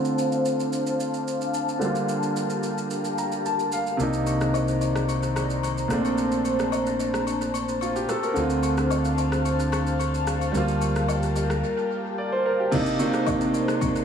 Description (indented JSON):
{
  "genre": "amapiano",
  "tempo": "110 BPM",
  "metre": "4/4",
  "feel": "straight",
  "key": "C dorian",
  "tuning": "A4 = 440 Hz",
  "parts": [
    { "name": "clear grand piano", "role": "accompaniment", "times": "0.0-14.0 s", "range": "Bb2 to Bb5", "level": "-25 LUFS", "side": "right 2 dB", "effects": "low-pass filter" },
    { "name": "airy breathy pad", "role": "sustained chords", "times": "0.0-14.0 s", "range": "Eb3 to Bb5", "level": "-29 LUFS", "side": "left 3 dB", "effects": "chorus, phaser, sidechain pumping, low-pass filter" },
    { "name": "deep house drum kit", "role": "drums", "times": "0.0-14.0 s", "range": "crash cymbal, kick drum, rim click, shaker", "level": "-34 LUFS", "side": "left 1 dB", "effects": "overdrive, tape echo" },
    { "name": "deep dub fingered electric bass", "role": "bass", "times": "4.0-11.6 s", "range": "Bb1 to D2", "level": "-28 LUFS", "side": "left 1 dB", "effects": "none" },
    { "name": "agogo bells and woodblock", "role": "percussion", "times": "4.3-13.9 s", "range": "none", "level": "-35 LUFS", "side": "left 9 dB", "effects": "tape echo" }
  ],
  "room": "light reverb",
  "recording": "echo-heavy mix, studio ambience",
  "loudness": "-22 LUFS",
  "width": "side -7 dB against mid",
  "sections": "0.0-12.7 A section; 12.7-14.0 B section",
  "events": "filter sweep 0.0-12.7; grand piano fill 2.9-4.0",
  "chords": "0.0 Dm7; 1.8 Gm9/D; 4.0 Cm9; 5.9 Bbmaj9; 8.4 Dm7; 10.5 Gm9/D; 12.7 Cm9"
}